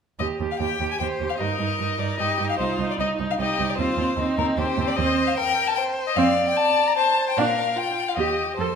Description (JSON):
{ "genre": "quick classical-period movement for string quartet", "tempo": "150 BPM", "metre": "3/4", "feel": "straight", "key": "Eb major, Bb major from 5.0 s", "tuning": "A4 = 442 Hz", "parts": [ { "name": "rich violin", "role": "melody", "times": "0.2-8.8 s", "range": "Bb4 to Bb5", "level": "-24 LUFS", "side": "left 6 dB", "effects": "none" }, { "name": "rich viola", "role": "accompaniment", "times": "0.2-8.8 s", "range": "C4 to A4", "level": "-27 LUFS", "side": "right 4 dB", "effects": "none" }, { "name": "rich cello", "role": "bass", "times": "0.2-8.8 s", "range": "C2 to Bb2", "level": "-29 LUFS", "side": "right 6 dB", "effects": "none" }, { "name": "rich violin", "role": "second line", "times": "0.6-8.8 s", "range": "Eb4 to D5", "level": "-27 LUFS", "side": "equal", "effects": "none" } ], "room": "wet recital hall reverb, RT60 1.6 s", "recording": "minimal, uncompressed stereo recording", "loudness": "-20 LUFS", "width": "side -6 dB against mid", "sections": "0.2-8.8 A section", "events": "none", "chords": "0.2 Eb; 1.4 Eb/G; 2.6 Cm; 3.8 Cm/Eb; 6.2 F5; 7.4 Bb; 8.2 Eb", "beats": "| 0.20 0.60 1.00 | 1.40 1.79 2.19 | 2.60 2.99 3.39 | 3.79 4.18 4.58 | 4.98 5.37 5.77 | 6.17 6.57 6.97 | 7.37 7.77 8.18 | 8.59" }